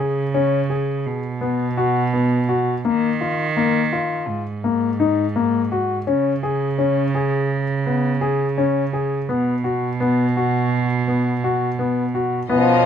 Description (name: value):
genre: contemporary instrumental, chamber music in an uneven meter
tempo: 168 BPM (eighths)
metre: 9/8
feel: straight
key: B lydian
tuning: A4 = 440 Hz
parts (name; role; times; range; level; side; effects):
- warm grand piano; arpeggios; 0.0-12.7 s; A#3 to G#4; -20 LUFS; left 4 dB; none
- rich cello; bass; 0.0-12.9 s; G#2 to D#3; -22 LUFS; right 5 dB; none
- French horn with straight mute; second line; 12.5-12.9 s; E#3; -16 LUFS; left 2 dB; none
- warm chamber string section; sustained chords; 12.5-12.9 s; C#4 to D#5; -22 LUFS; left 4 dB; none
room: light reverb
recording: dark, warm production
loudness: -18 LUFS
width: side -8 dB against mid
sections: 0.0-12.5 A section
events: none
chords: 0.0 C#5; 1.1 B5; 2.9 D#sus2; 4.3 G#sus2; 6.1 C#5; 9.3 B5